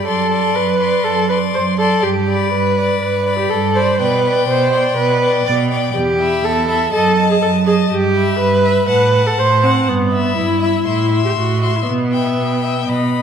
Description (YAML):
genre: quick classical-period movement for string quartet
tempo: 122 BPM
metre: 4/4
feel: straight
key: G major, E minor from 5.9 s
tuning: A4 = 440 Hz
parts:
  - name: rich violin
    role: melody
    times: 0.0-13.2 s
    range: G5 to C6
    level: -25 LUFS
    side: left 10 dB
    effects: none
  - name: rich violin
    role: second line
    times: 0.0-13.2 s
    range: D5 to F#5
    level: -23 LUFS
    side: left 4 dB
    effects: none
  - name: clear viola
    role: accompaniment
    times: 0.0-13.2 s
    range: B3 to D5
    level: -16 LUFS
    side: equal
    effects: none
  - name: clear cello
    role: bass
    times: 0.1-13.2 s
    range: E2 to B2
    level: -19 LUFS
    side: right 4 dB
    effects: none
room: wet recital hall reverb, RT60 1.6 s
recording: recorded in a church or concert hall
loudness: -13 LUFS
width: side -7 dB against mid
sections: 0.0-13.2 A section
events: none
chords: 0.1 D7/F#; 2.0 G; 4.0 G/B; 5.9 Em; 6.9 D#dim/F#; 7.9 Em/G; 8.9 Am69; 9.9 Em/G; 10.9 Am; 11.9 Em/B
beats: | 0.06 0.55 1.04 1.54 | 2.03 2.52 3.01 3.50 | 3.99 4.48 4.97 5.46 | 5.95 6.44 6.92 7.42 | 7.91 8.39 8.89 9.38 | 9.88 10.37 10.86 11.36 | 11.87 12.38 12.88